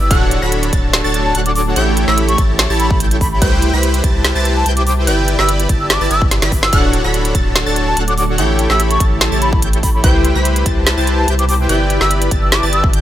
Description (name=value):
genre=future bass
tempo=145 BPM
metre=4/4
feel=half-time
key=D major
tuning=A4 = 440 Hz
part: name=hollow concert flute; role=melody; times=0.0-12.9 s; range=A5 to E6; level=-21 LUFS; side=left 1 dB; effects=sidechain pumping, dub echo
part: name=ethereal airy pad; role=sustained chords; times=0.3-13.0 s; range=B2 to C#5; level=-26 LUFS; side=right 1 dB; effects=ensemble chorus, built-in reverb, sidechain pumping
part: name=wide unison pluck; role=arpeggios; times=0.0-13.0 s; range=F#6 to B6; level=-25 LUFS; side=right 2 dB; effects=phaser, sidechain pumping, dub echo
part: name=soft supersaw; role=riff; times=0.0-13.0 s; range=D4 to B5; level=-18 LUFS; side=equal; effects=sidechain pumping
part: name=saturated sub bass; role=bass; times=0.0-13.0 s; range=D1 to C2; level=-17 LUFS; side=equal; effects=sidechain pumping
part: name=electronic kick drum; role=drums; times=0.1-12.9 s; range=none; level=-16 LUFS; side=equal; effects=studio reverb
part: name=trap drum kit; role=drums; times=0.1-13.0 s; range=hi-hat, snare drum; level=-18 LUFS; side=equal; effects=studio reverb
room=digital ambience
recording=none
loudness=-12 LUFS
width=side -12 dB against mid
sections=0.0-13.0 A section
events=drum fill 6.3-6.7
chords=0.1 Dmaj7; 1.8 A7; 3.4 Cmaj7; 5.1 G6; 6.7 Dmaj7; 8.4 A7; 10.0 Cmaj7; 11.7 G6